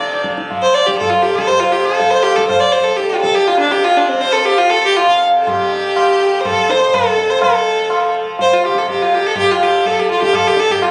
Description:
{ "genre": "indian classical, Hindustani", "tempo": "122 BPM", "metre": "4/4", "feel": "straight", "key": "F raga bhupali", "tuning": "A4 = 441 Hz", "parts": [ { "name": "rich violin", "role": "melody", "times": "0.0-10.9 s", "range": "C4 to F5", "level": "-16 LUFS", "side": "equal", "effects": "tape echo" }, { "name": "pedal harmonium", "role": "second line", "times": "0.0-10.9 s", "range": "C4 to D5", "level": "-23 LUFS", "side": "equal", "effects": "tape echo" }, { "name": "tanpura", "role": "drone", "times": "0.0-10.9 s", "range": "F2 to F3", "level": "-25 LUFS", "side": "equal", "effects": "none" }, { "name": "tabla", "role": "percussion", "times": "0.1-10.9 s", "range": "none", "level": "-22 LUFS", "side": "equal", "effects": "none" } ], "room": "moderate small room reverb, RT60 0.5 s", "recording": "recorded on a phone in the room, club reverb, compression", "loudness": "-14 LUFS", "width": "mono", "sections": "0.0-10.9 A section", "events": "speeding up 0.0-10.9", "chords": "none" }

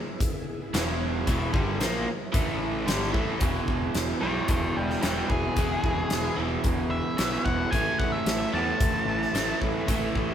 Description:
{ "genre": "classic rock", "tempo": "111 BPM", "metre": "4/4", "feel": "straight", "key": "E mixolydian", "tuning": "A4 = 441 Hz", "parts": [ { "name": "string machine, violas", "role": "sustained chords", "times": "0.0-10.3 s", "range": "B3 to E5", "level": "-38 LUFS", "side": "equal", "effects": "none" }, { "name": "huge arena drum kit", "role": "drums", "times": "0.2-10.3 s", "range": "hi-hat, kick drum, snare drum", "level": "-28 LUFS", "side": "equal", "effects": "none" }, { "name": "overdriven electric guitar", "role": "riff", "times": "0.7-10.3 s", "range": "E2 to A#3", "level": "-29 LUFS", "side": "right 1 dB", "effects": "none" }, { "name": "fuzz picked electric bass", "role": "bass", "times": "0.7-10.3 s", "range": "E1 to E2", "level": "-32 LUFS", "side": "equal", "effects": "overdrive" }, { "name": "octave-fuzz lead guitar", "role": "melody", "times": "4.2-9.6 s", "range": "D4 to A5", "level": "-30 LUFS", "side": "equal", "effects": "distortion" } ], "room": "moderate large studio reverb, RT60 1.2 s", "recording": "band playing live in one room", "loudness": "-24 LUFS", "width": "side -9 dB against mid", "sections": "0.0-3.4 A section; 3.4-10.3 B section", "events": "lead electric guitar solo 3.4-10.3", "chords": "0.0 E; 2.3 A5; 2.9 E; 7.7 A" }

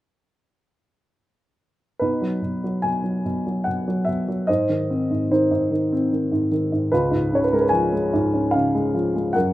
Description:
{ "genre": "classical, lyrical solo piano", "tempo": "74 BPM", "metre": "3/4", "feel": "rubato", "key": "B major", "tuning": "A4 = 442 Hz", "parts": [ { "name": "dark grand piano", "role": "solo", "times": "2.0-9.5 s", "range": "C#2 to G#5", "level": "-19 LUFS", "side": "equal", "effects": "none" } ], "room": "light reverb", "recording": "minimal, uncompressed stereo recording", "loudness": "-19 LUFS", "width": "side -15 dB against mid", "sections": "2.0-9.5 A section", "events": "none", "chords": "2.0 B; 4.5 G#; 6.9 C#" }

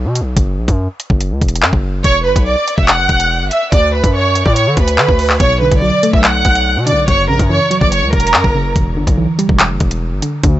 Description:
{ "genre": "hip hop, drill", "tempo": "143 BPM", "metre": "4/4", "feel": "half-time", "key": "unclear", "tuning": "A4 = 441 Hz", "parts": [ { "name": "distorted 808-style bass", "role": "bass", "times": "0.0-10.6 s", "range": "E1 to D3", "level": "-16 LUFS", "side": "equal", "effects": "distortion" }, { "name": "drill drum kit", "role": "drums", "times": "0.2-10.5 s", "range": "handclaps, hi-hat, kick drum", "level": "-14 LUFS", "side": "equal", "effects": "none" }, { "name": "warm studio violin section", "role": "melody", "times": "2.0-8.7 s", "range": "A#4 to F#6", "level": "-14 LUFS", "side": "right 1 dB", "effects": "none" }, { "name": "soft round pluck", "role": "accompaniment", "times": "5.4-10.6 s", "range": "E2 to A3", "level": "-18 LUFS", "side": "right 1 dB", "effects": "chorus" } ], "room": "little or no reverb", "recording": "nothing above 8.0 kHz", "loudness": "-11 LUFS", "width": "side -14 dB against mid", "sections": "0.0-10.6 A section", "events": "break 0.0-2.0", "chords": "0.4 F#7(no3); 2.0 E7(no3); 3.7 D6; 5.4 Bm7; 7.1 F#7; 8.8 Em7" }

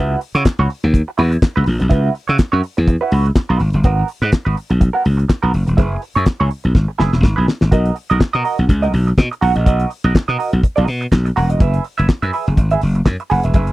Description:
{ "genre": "disco", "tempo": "124 BPM", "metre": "4/4", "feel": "swing 56% on 16ths", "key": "B major", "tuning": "A4 = 440 Hz", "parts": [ { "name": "direct-recorded clean electric guitar", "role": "accompaniment", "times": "0.0-13.7 s", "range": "B3 to F#5", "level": "-20 LUFS", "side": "right 4 dB", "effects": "wah, lush chorus" }, { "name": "slap bass", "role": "bass", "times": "0.0-13.7 s", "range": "E1 to C#3", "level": "-15 LUFS", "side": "equal", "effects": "tube saturation" }, { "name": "damped 70s drum kit", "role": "drums", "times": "0.2-13.7 s", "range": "handclaps, hi-hat, kick drum, snare drum", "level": "-13 LUFS", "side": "equal", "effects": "none" } ], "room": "little or no reverb", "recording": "dry, close 1970s-style studio recording", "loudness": "-13 LUFS", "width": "side -17 dB against mid", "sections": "0.0-7.7 A section; 7.7-13.7 B section", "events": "drum fill 6.8-7.7", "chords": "0.0 C#m11; 3.6 G#m9; 5.8 F#9sus4; 7.7 Bmaj7; 11.6 F#9sus4" }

